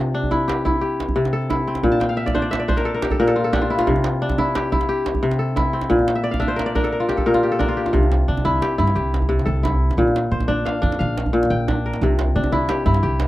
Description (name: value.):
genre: west african traditional, West African string and xylophone music.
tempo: 118 BPM (dotted quarters).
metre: 12/8.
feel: straight.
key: C mixolydian.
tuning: A4 = 441 Hz.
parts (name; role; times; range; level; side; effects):
kora; arpeggios; 0.0-13.3 s; Bb2 to A5; -19 LUFS; left 1 dB; none.
djembe; percussion; 0.2-13.3 s; none; -24 LUFS; right 2 dB; none.
upright bass; bass; 7.9-13.3 s; Bb1 to C3; -21 LUFS; equal; none.
room: little or no reverb.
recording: dry, close 1970s-style studio recording.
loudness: -17 LUFS.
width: side -16 dB against mid.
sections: 0.0-13.3 A section.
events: kora fill 1.9-3.9, 6.2-7.9.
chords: 0.0 C; 1.8 Bb; 3.9 C; 5.9 Bb; 7.9 C; 10.0 Bb; 12.0 C.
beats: 0.32 0.82 1.33 | 1.84 2.35 2.86 3.37 | 3.88 4.38 4.89 5.40 | 5.91 6.42 6.93 7.43 | 7.94 8.45 8.96 9.47 | 9.98 10.49 11.00 11.51 | 12.01 12.52 13.03.